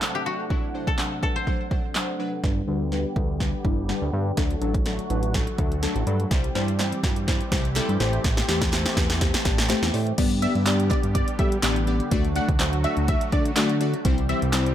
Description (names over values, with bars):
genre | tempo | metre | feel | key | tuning
dance-pop | 124 BPM | 4/4 | straight | G major | A4 = 440 Hz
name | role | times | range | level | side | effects
koto | melody | 0.0-3.1 s | F#4 to C5 | -30 LUFS | left 3 dB | ping-pong delay
glassy digital keys | accompaniment | 0.0-14.7 s | F#3 to B5 | -28 LUFS | left 3 dB | chorus, sidechain pumping, low-pass filter
filtered supersaw swell | sustained chords | 0.0-14.7 s | C3 to F#5 | -32 LUFS | right 1 dB | sidechain pumping, low-pass filter
punchy analog drum machine | drums | 0.0-14.7 s | crash cymbal, handclaps, hi-hat, kick drum, snare drum | -24 LUFS | equal | none
fat analog bass | bass | 2.4-14.7 s | G1 to G3 | -26 LUFS | right 1 dB | sidechain pumping
group handclap | percussion | 6.8-14.7 s | none | -35 LUFS | right 5 dB | none
plucky unison lead | melody | 10.4-14.4 s | D5 to F#5 | -31 LUFS | right 1 dB | sidechain pumping, ping-pong delay
room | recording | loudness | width
little or no reverb | none | -21 LUFS | side -11 dB against mid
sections
0.0-2.4 A section; 2.4-10.2 B section; 10.2-14.7 C section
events
build-up 2.4-10.2; drum fill 2.4-10.2; filter sweep 2.4-10.2; synth keys fill 5.3-6.3, 9.2-10.2; drop 10.2-14.7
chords
0.0 D7; 2.4 G; 4.4 D; 6.3 C; 8.0 Am7; 10.2 G; 12.1 D; 14.1 C